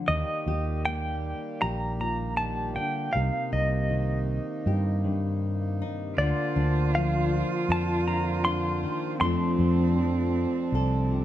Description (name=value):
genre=acoustic folk-pop ballad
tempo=79 BPM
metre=4/4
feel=straight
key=unclear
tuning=A4 = 437 Hz
part: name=nylon-string guitar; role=accompaniment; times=0.0-11.2 s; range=F2 to A4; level=-31 LUFS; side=left 4 dB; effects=none
part: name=direct-recorded clean electric guitar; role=melody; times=0.1-11.2 s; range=D5 to C6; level=-30 LUFS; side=equal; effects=tremolo
part: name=pedal harmonium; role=sustained chords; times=0.1-11.2 s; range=C3 to C5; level=-36 LUFS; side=right 3 dB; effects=none
part: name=fretless electric bass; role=bass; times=0.1-11.2 s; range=Bb1 to G2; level=-27 LUFS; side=equal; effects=none
part: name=warm cello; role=second line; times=6.2-11.2 s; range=C4 to F4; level=-30 LUFS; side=right 5 dB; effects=none
room=light reverb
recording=close, detailed microphones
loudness=-24 LUFS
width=side -12 dB against mid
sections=0.1-11.2 A section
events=none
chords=0.1 Eb; 3.1 Cm7; 6.2 Bbadd9/D; 9.2 F6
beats=| 0.09 0.85 1.61 2.38 | 3.14 3.90 4.66 5.42 | 6.18 6.94 7.70 8.46 | 9.21 9.97 10.73